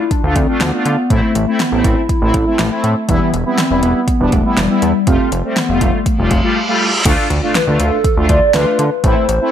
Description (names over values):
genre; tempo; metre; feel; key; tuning
synth-pop; 121 BPM; 4/4; straight; D dorian; A4 = 440 Hz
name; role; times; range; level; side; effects
hollow clarinet-like synth lead; melody; 0.0-9.5 s; E3 to D5; -17 LUFS; left 1 dB; chorus, phaser, ping-pong delay
analog synth brass; accompaniment; 0.0-9.5 s; G3 to F4; -18 LUFS; equal; chorus
deep house drum kit; drums; 0.1-9.4 s; crash cymbal, hi-hat, kick drum, snare drum; -17 LUFS; equal; none
fat analog bass; bass; 0.2-9.4 s; E1 to D3; -17 LUFS; equal; none
reverse cymbal and impact; sound effects; 6.2-9.0 s; none; -20 LUFS; right 1 dB; none
room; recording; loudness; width
light reverb; none; -12 LUFS; side -9 dB against mid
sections
0.0-7.1 A section; 7.1-9.5 B section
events
reverse cymbal 6.2-7.1; silent gap 6.6-7.1; impact 7.1-9.0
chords
0.0 Dm; 1.1 Am; 3.1 Em; 5.1 Fadd9; 7.1 Dm